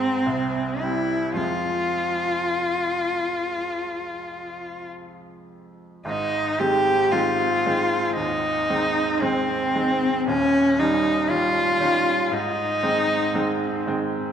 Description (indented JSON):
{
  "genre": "classical, romantic duo for cello and grand piano",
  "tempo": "50-60 BPM",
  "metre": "4/4",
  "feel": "rubato",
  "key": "F minor, Ab major from 6.1 s",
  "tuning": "A4 = 440 Hz",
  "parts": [
    { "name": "rich cello", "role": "melody", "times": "0.0-13.9 s", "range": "C4 to G4", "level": "-22 LUFS", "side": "equal", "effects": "none" },
    { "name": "bright grand piano", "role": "accompaniment", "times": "0.0-14.3 s", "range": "Eb1 to Db4", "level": "-27 LUFS", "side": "right 2 dB", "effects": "none" }
  ],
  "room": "wet concert hall reverb, RT60 2.1 s",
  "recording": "minimal, uncompressed stereo recording",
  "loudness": "-20 LUFS",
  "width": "side -8 dB against mid",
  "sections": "0.0-6.1 A section; 6.1-14.3 B section",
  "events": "none",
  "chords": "0.3 C; 1.4 Fm; 6.1 Ab; 10.3 Eb9; 12.3 Ab",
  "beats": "0.26 | 1.38 2.55 3.74 4.91 | 6.06 7.12 8.17 9.22 | 10.27 11.29 12.31 13.34"
}